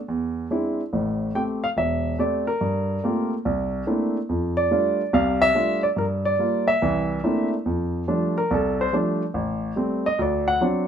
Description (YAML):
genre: solo jazz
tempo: 143 BPM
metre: 4/4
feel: swing 65% on 8ths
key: F major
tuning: A4 = 437 Hz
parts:
  - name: warm baby grand piano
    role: solo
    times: 0.1-10.9 s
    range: E1 to G5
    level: -21 LUFS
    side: equal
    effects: none
room: moderate club reverb, RT60 0.6 s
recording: none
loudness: -21 LUFS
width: side -8 dB against mid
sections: 0.0-7.7 A section; 7.7-10.9 B section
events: grand piano solo 7.7-10.9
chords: 0.1 Eaug7; 0.9 Am7; 2.6 Gm11; 3.5 C13; 4.3 F69; 6.0 Gm7; 6.8 C13; 7.7 F69; 9.3 Am7b5; 10.2 D7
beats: 0.09 0.51 | 0.93 1.35 1.77 2.19 | 2.61 3.03 3.45 3.87 | 4.29 4.71 5.13 5.56 | 5.98 6.40 6.82 7.24 | 7.66 8.08 8.50 8.92 | 9.34 9.76 10.18 10.60